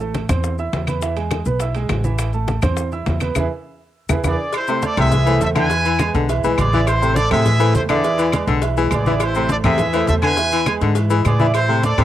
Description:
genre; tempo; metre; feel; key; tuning
latin, salsa; 205 BPM; 4/4; straight; A harmonic minor; A4 = 441 Hz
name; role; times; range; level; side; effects
warm concert grand piano; accompaniment; 0.0-12.0 s; E3 to E6; -23 LUFS; right 6 dB; cassette tape, plate reverb
upright bass; bass; 0.0-12.0 s; A1 to A2; -20 LUFS; equal; none
bongos and cowbell; percussion; 0.0-12.0 s; none; -31 LUFS; left 9 dB; none
congas; percussion; 0.0-12.0 s; none; -24 LUFS; left 1 dB; none
maracas; percussion; 0.0-12.0 s; none; -38 LUFS; left 9 dB; none
timbales and agogo bells; percussion; 0.1-12.0 s; none; -29 LUFS; right 9 dB; none
claves; percussion; 0.3-12.0 s; none; -29 LUFS; left 9 dB; none
bright trumpet section; melody; 4.3-12.0 s; E4 to G#5; -20 LUFS; equal; cassette tape, plate reverb
warm baritone saxophone; second line; 4.7-12.0 s; C3 to E3; -21 LUFS; left 7 dB; cassette tape, plate reverb
room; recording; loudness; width
light reverb; home recording on cassette; -16 LUFS; side -12 dB against mid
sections
0.0-4.5 A section; 4.5-12.0 B section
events
band accent 3.4-4.5; drum fill 3.8-4.5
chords
0.0 Am; 1.0 E; 2.2 Am; 3.4 E7; 4.5 Am; 5.7 E7; 6.9 Am; 8.0 E7; 9.2 Am; 10.4 E7

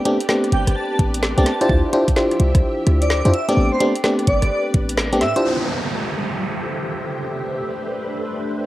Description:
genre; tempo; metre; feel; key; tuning
UK garage, two-step garage; 128 BPM; 4/4; swing 64% on 16ths; D dorian; A4 = 438 Hz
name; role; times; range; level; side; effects
soft string machine; sustained chords; 0.0-8.7 s; D3 to E5; -28 LUFS; equal; ensemble chorus, sidechain pumping
FM electric piano; stabs; 0.0-5.7 s; A3 to C5; -20 LUFS; equal; chorus, cassette tape
garage drum kit; drums; 0.1-8.6 s; hi-hat, rim click, snare drum; -24 LUFS; equal; low-pass filter on hats, cassette tape, low-pass filter on snare, low-pass filter on room
airy dreamy lead; melody; 0.5-5.4 s; C5 to A5; -25 LUFS; equal; chorus, phaser, cassette tape, analog delay
short 808-style bass; bass; 0.5-5.3 s; G1 to A2; -18 LUFS; equal; none
electronic kick drum; drums; 1.0-4.9 s; none; -20 LUFS; equal; cassette tape
downlifter; sound effects; 5.4-8.7 s; none; -26 LUFS; right 2 dB; none
room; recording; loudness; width
moderate spring reverb, RT60 1.8 s; home recording on cassette; -17 LUFS; side -15 dB against mid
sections
0.0-5.4 A section; 5.4-8.7 B section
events
band accent 5.0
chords
0.0 Am11; 1.7 Dm11; 3.3 Am11; 5.4 Dm11; 7.1 Am11

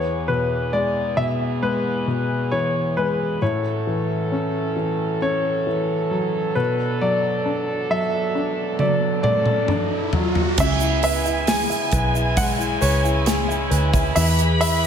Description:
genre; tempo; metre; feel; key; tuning
pop ballad; 67 BPM; 4/4; straight; unclear; A4 = 436 Hz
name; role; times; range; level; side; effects
clear concert grand piano; melody; 0.0-14.9 s; B4 to G#5; -24 LUFS; left 1 dB; slapback echo
warm baby grand piano; accompaniment; 0.0-14.9 s; E2 to B4; -24 LUFS; left 3 dB; slapback echo
muted French horn section; sustained chords; 0.0-14.9 s; E2 to B4; -27 LUFS; right 3 dB; none
riser; sound effects; 8.1-10.6 s; none; -29 LUFS; right 1 dB; slapback echo
modern studio drum kit; drums; 8.8-14.8 s; crash cymbal, hi-hat, kick drum, snare drum, toms; -23 LUFS; right 1 dB; none
dark studio violin section; second line; 10.6-14.9 s; G#5 to B5; -26 LUFS; equal; slapback echo
vintage muted fingered electric bass; bass; 10.6-14.9 s; B1 to E2; -22 LUFS; right 1 dB; none
egg shaker; percussion; 10.6-14.9 s; none; -36 LUFS; right 12 dB; none
room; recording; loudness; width
moderate lush hall reverb, RT60 1.9 s, small room ambience; big arena sound; -19 LUFS; side -8 dB against mid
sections
0.0-10.6 A section; 10.6-14.9 B section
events
riser 8.1-10.6; drum fill 8.8-10.6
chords
0.0 E; 3.4 A6; 6.5 Bm7; 10.6 C#m7; 14.2 E

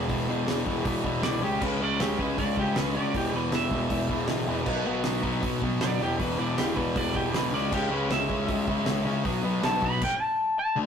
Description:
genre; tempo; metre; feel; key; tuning
punk rock; 157 BPM; 4/4; straight; E major; A4 = 440 Hz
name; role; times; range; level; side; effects
lightly driven lead guitar; melody; 0.0-10.8 s; G4 to B5; -30 LUFS; right 1 dB; none
distorted electric guitar; riff; 0.0-10.0 s; E2 to C#4; -34 LUFS; right 9 dB; overdrive
sludgy distorted guitar; riff; 0.0-10.9 s; E2 to D4; -28 LUFS; left 4 dB; overdrive
fuzz picked electric bass; bass; 0.0-10.0 s; E1 to C#3; -35 LUFS; right 1 dB; overdrive
loose indie drum kit; drums; 0.1-10.1 s; crash cymbal, hi-hat, kick drum, snare drum; -32 LUFS; right 1 dB; none
room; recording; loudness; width
moderate stone room reverb, RT60 1.3 s; rough rehearsal-room recording, tube saturation; -24 LUFS; side -7 dB against mid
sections
0.0-10.8 A section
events
lead electric guitar solo 0.0-10.8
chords
0.0 E; 1.4 C#5; 3.1 E5; 4.7 B5; 6.0 E5; 7.5 C#m; 9.3 B5; 10.0 N.C.

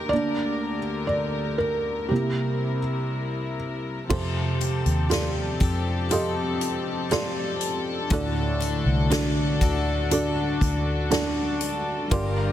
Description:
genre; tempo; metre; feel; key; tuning
pop ballad; 60 BPM; 4/4; straight; unclear; A4 = 440 Hz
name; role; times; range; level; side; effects
felt-muted upright piano; accompaniment; 0.0-12.5 s; G2 to Eb5; -26 LUFS; right 2 dB; none
warm studio string section; sustained chords; 0.0-12.5 s; C2 to Bb4; -29 LUFS; left 3 dB; none
picked steel-string acoustic guitar; arpeggios; 4.1-12.5 s; G2 to A4; -33 LUFS; left 6 dB; digital delay
vintage muted fingered electric bass; bass; 4.1-12.5 s; G1 to F2; -27 LUFS; equal; none
unplugged drum kit; drums; 4.1-12.3 s; crash cymbal, hi-hat, kick drum, snare drum; -28 LUFS; left 1 dB; none
room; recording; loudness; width
light reverb; dense, heavily limited modern master; -23 LUFS; side -11 dB against mid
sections
0.0-4.1 A section; 4.1-12.5 B section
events
felt piano solo 0.0-4.1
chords
0.1 Gm/D; 2.1 C7; 4.1 Fadd9; 8.1 D

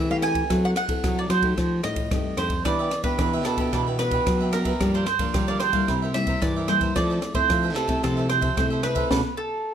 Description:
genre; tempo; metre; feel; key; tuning
samba and choro; 112 BPM; 4/4; straight; unclear; A4 = 437 Hz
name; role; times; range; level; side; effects
mandolin; melody; 0.0-9.7 s; A4 to G#5; -26 LUFS; right 4 dB; none
nylon-string guitar; accompaniment; 0.0-9.2 s; G2 to A4; -29 LUFS; left 4 dB; none
nylon-string guitar; bass; 0.0-9.2 s; F2 to G3; -26 LUFS; equal; none
open jazz drum kit; drums; 0.2-9.2 s; kick drum, ride cymbal, rim click, snare drum; -28 LUFS; equal; none
cavaquinho; accompaniment; 2.6-9.2 s; D4 to F5; -31 LUFS; right 6 dB; none
room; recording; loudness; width
moderate small room reverb, RT60 0.5 s; none; -21 LUFS; side -9 dB against mid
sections
0.0-9.7 A section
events
band accent 9.1-9.7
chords
0.0 Fmaj9 (rootless); 0.5 F#m7b5; 1.6 F9; 2.7 Em7; 4.8 Gm7; 5.9 C7; 7.0 Fmaj7; 9.1 Bm7

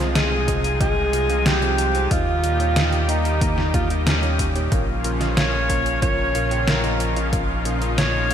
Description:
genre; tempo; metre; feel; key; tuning
synthwave; 92 BPM; 4/4; straight; Bb dorian; A4 = 440 Hz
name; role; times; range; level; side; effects
lush unison pad; sustained chords; 0.0-8.3 s; Bb2 to G4; -26 LUFS; equal; chorus, vintage 12-bit sampler grit, sidechain pumping, shimmer reverb
FM electric piano with soft pad layer; stabs; 0.0-8.3 s; Bb2 to G5; -29 LUFS; right 2 dB; chorus, ping-pong delay, shimmer reverb
round analog bass; bass; 0.0-8.3 s; Bb1 to Eb2; -24 LUFS; equal; none
breathy alto saxophone; melody; 0.2-8.3 s; Db4 to Db5; -24 LUFS; equal; ping-pong delay, shimmer reverb
detuned 8-bit digital drum machine; drums; 0.2-8.3 s; hi-hat, snare drum; -24 LUFS; equal; overdrive, gated reverb
electronic kick drum; drums; 0.5-7.5 s; none; -24 LUFS; equal; none
room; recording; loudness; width
moderate lush hall reverb, RT60 2.5 s; bright 1980s-style digital production; -18 LUFS; side -9 dB against mid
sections
0.0-8.3 A section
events
none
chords
0.0 Ab6/C; 2.1 Eb; 4.7 Bbm

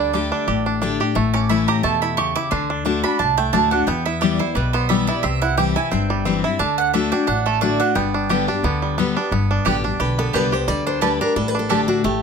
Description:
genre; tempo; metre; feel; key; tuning
bluegrass; 176 BPM; 4/4; swing 54% on 8ths; G major; A4 = 439 Hz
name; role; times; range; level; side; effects
picked steel-string acoustic guitar; accompaniment; 0.0-12.2 s; E2 to G4; -21 LUFS; left 7 dB; none
bluegrass banjo; arpeggios; 0.0-12.2 s; G3 to G4; -23 LUFS; right 6 dB; none
mandolin; stabs; 0.0-11.8 s; A3 to D6; -22 LUFS; right 8 dB; none
upright bass; bass; 0.0-12.2 s; G1 to E2; -26 LUFS; equal; none
picked steel-string acoustic guitar; melody; 10.0-12.2 s; F#4 to D5; -22 LUFS; left 1 dB; none
room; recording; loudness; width
light reverb; close, detailed microphones; -17 LUFS; side -6 dB against mid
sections
0.0-9.3 A section; 9.3-12.2 B section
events
mandolin solo 0.0-9.3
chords
0.0 Dsus4; 1.2 A; 2.5 D; 3.9 Em; 5.2 C; 6.6 D; 8.0 G; 10.7 Dsus4

